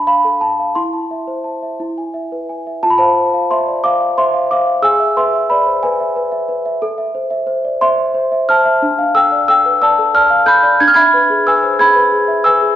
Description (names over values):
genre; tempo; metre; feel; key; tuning
classical, lullaby for celesta; 60 BPM (dotted quarters); 6/8; straight; A minor; A4 = 440 Hz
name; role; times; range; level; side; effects
celesta; solo; 0.0-12.8 s; D4 to G#6; -12 LUFS; equal; none
room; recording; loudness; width
wet recital hall reverb, RT60 1.4 s; recorded in a church or concert hall; -11 LUFS; side -12 dB against mid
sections
0.0-2.8 A section; 2.8-12.8 B section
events
none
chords
0.0 Dm6; 0.8 Am/E; 1.8 E; 2.8 F5; 4.8 E/G#; 6.8 Am; 8.8 Dm; 10.8 E7/D